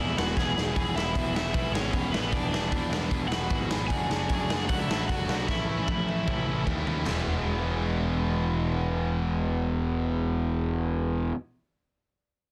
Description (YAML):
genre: punk rock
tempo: 152 BPM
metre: 4/4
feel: straight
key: E mixolydian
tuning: A4 = 440 Hz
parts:
  - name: overdriven semi-hollow guitar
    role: melody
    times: 0.0-6.6 s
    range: B3 to G#5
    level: -34 LUFS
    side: equal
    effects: none
  - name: distorted electric guitar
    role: riff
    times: 0.0-11.3 s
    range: A2 to G#4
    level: -36 LUFS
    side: equal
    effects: overdrive
  - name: distorted electric guitar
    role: riff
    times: 0.0-11.4 s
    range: E2 to D4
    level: -36 LUFS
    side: equal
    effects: distortion
  - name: fuzz picked electric bass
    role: bass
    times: 0.0-11.3 s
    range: E1 to D#2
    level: -33 LUFS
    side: equal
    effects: overdrive
  - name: raw garage drum kit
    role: drums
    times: 0.2-7.2 s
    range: crash cymbal, hi-hat, kick drum, snare drum, toms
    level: -32 LUFS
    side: equal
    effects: none
room: little or no reverb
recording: dense, heavily limited modern master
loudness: -28 LUFS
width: mono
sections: 0.8-7.1 A section; 7.1-10.2 B section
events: drum fill 0.4-0.8, 5.5-7.1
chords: 0.0 E; 3.9 D/F#; 5.5 A; 7.1 E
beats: 0.37 | 0.76 1.16 1.55 1.94 | 2.34 2.73 3.12 3.52 | 3.91 4.30 4.70 5.09 | 5.49 5.88 6.28 6.67 | 7.06 7.46 7.85 8.25 | 8.64 9.03 9.43 9.82